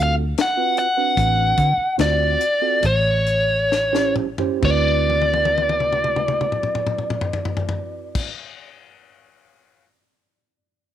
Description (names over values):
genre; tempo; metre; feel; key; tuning
straight-eighth soul blues; 64-77 BPM; 4/4; straight; D mixolydian; A4 = 440 Hz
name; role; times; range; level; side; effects
biting lead guitar; melody; 0.0-8.3 s; C#5 to F#5; -19 LUFS; left 1 dB; overdrive
mellow tine electric piano; accompaniment; 0.0-8.3 s; C4 to C5; -26 LUFS; right 13 dB; lush chorus
vintage muted fingered electric bass; bass; 0.0-8.3 s; A1 to D3; -22 LUFS; equal; none
tight funk drum kit; drums; 0.4-9.8 s; crash cymbal, hi-hat, kick drum, snare drum, toms; -26 LUFS; left 4 dB; none
room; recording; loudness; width
small room ambience; 1960s-style stereo; -17 LUFS; side -10 dB against mid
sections
0.0-4.6 A section; 4.6-8.4 B section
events
slowing down 0.0-4.6; drum fill 3.7-4.6, 5.1-8.2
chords
0.0 D7#9; 2.8 A7#9; 4.6 D13